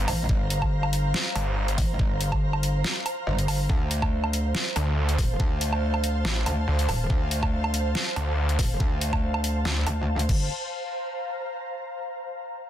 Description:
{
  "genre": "heavy wobble dubstep",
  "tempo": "141 BPM",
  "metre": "4/4",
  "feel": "swing 54% on 16ths, half-time",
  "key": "unclear",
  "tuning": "A4 = 440 Hz",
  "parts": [
    { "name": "snarling distorted saw bass", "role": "bass", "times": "0.0-1.8, 4.8-9.8 s", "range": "G1 to D2", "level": "-24 LUFS", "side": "equal", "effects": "distortion, overdrive" },
    { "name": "ethereal airy pad", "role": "texture", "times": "0.0-12.2 s", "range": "C5 to Bb5", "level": "-32 LUFS", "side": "right 1 dB", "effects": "ensemble chorus, built-in reverb, sidechain pumping" },
    { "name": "metallic wobble bass", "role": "bass", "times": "0.1-10.5 s", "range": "Eb1 to D2", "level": "-26 LUFS", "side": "equal", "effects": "distortion, chorus, overdrive" },
    { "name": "dubstep drum kit", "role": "drums", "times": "0.1-10.4 s", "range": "crash cymbal, hi-hat, snare drum, woodblock", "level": "-30 LUFS", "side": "equal", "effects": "overdrive, small room reverb" },
    { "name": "electronic kick drum", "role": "drums", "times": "0.3-10.4 s", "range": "none", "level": "-25 LUFS", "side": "equal", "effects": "overdrive, small room reverb" }
  ],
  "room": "little or no reverb",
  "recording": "dense, heavily limited modern master",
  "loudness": "-23 LUFS",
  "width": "side -11 dB against mid",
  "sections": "0.0-10.5 A section; 10.5-12.2 B section",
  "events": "drop 0.0-10.5",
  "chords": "0.0 Gm; 3.7 Dm; 10.3 G7sus4; 10.5 C7sus4",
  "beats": "| 0.29 0.72 1.14 1.57 | 1.99 2.42 2.84 3.27 | 3.69 4.12 4.55 4.97 | 5.40 5.82 6.25 6.67 | 7.10 7.53 7.95 8.38 | 8.80 9.23 9.65 10.08 | 10.50 10.93 11.36 11.78"
}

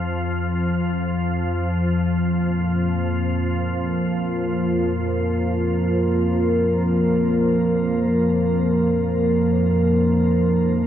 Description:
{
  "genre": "dark ambient drone",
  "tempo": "free time",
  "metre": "none",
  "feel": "none",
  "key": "unclear",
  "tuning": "A4 = 439 Hz",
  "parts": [
    { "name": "organ-like drone", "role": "drone", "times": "0.0-10.9 s", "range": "F2 to F3", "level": "-21 LUFS", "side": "equal", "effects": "ensemble chorus, built-in reverb" },
    { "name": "dark analog pad", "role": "sustained chords", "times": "1.8-10.9 s", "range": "F3 to Bb4", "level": "-20 LUFS", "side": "equal", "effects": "chorus, shimmer reverb" }
  ],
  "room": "wet huge ambient reverb, RT60 8.2 s",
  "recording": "none",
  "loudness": "-18 LUFS",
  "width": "side -10 dB against mid",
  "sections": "0.0-10.9 A section",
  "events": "none",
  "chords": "0.0 N.C.; 1.9 Bb5/F",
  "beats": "free time"
}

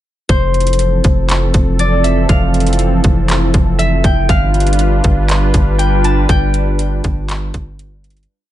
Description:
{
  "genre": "hip hop, atmospheric cloud-rap",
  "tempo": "120 BPM",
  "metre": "4/4",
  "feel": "half-time",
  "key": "F lydian",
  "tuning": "A4 = 440 Hz",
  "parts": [
    { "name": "concert harp", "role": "melody", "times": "0.3-7.8 s", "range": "C5 to A5", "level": "-20 LUFS", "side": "left 2 dB", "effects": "ping-pong delay" },
    { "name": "warm analog pad", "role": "sustained chords", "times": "0.3-8.3 s", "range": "E3 to B4", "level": "-18 LUFS", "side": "right 1 dB", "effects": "lush chorus, sidechain pumping" },
    { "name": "long sustained 808-style bass", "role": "bass", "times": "0.3-8.3 s", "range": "F1 to G1", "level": "-15 LUFS", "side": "equal", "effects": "none" },
    { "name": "trap drum kit", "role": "drums", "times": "0.3-8.3 s", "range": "handclaps, hi-hat, kick drum", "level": "-15 LUFS", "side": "equal", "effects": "none" }
  ],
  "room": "digital ambience",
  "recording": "nothing above 10.7 kHz",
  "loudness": "-11 LUFS",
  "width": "side -13 dB against mid",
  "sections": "0.3-8.3 verse",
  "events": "fade-out 6.3-8.3",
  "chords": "0.3 Fmaj7; 4.3 G7",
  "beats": "| 0.29 0.79 1.29 1.79 | 2.29 2.79 3.29 3.79 | 4.29 4.79 5.29 5.79 | 6.29 6.79 7.29 7.79"
}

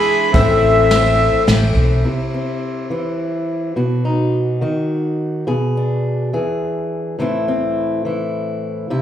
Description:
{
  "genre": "indie folk with a building arrangement",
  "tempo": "105 BPM",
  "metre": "3/4",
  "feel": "straight",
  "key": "unclear",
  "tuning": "A4 = 441 Hz",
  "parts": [
    { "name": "accordion", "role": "melody", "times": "0.0-1.4 s", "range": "E5 to B5", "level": "-17 LUFS", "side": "equal", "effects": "slapback echo, tape echo" },
    { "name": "dark fiddle", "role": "second line", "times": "0.0-1.4 s", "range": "C4 to G#4", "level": "-22 LUFS", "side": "right 3 dB", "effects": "slapback echo, tape echo" },
    { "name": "picked twelve-string acoustic guitar", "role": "accompaniment", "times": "0.0-2.1 s", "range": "A2 to E4", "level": "-18 LUFS", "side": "left 7 dB", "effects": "slapback echo" },
    { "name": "hollow-body short-scale fingered electric bass", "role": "bass", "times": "0.3-2.0 s", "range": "A1 to B1", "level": "-16 LUFS", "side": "right 1 dB", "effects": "none" },
    { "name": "soft brush drum kit", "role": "drums", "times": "0.3-1.6 s", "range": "kick drum, ride cymbal, snare drum", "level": "-22 LUFS", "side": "equal", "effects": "none" },
    { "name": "fingerpicked steel-string acoustic guitar", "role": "accompaniment", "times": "2.0-9.0 s", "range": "A2 to G#4", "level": "-18 LUFS", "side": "equal", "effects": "none" }
  ],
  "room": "little or no reverb",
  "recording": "live gig heard through the venue's PA, club reverb",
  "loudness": "-15 LUFS",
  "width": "side -10 dB against mid",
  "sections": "0.0-2.0 A section; 2.0-9.0 B section",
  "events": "none",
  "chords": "0.3 Am; 2.0 C; 3.8 B; 5.5 E7/B; 7.2 Am",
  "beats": "| 0.34 0.91 1.48 | 2.04 2.62 3.19 | 3.76 4.33 4.90 | 5.47 6.05 6.62 | 7.19 7.76 8.33 | 8.91"
}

